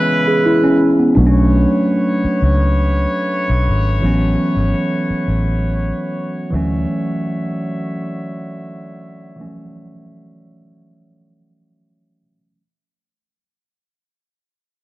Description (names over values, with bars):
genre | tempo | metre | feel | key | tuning
contemporary R&B | 84 BPM | 4/4 | straight | unclear | A4 = 440 Hz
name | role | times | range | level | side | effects
mellow tine electric piano | accompaniment | 0.0-12.6 s | E3 to G#4 | -17 LUFS | equal | low-pass filter
clear brass ensemble | sustained chords | 0.0-12.6 s | C#3 to E5 | -23 LUFS | left 1 dB | low-pass filter
vintage muted fingered electric bass | bass | 1.2-6.8 s | G#1 to D2 | -16 LUFS | equal | none
room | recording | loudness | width
light reverb, small room ambience | dry, gritty hardware recording | -14 LUFS | side -18 dB against mid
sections
0.0-1.2 A section; 1.2-12.6 B section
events
fade-out 1.2-12.6; filter sweep 1.2-12.6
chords
0.0 Amaj9 (rootless); 1.2 Bm9; 4.0 A69; 6.5 Dmaj9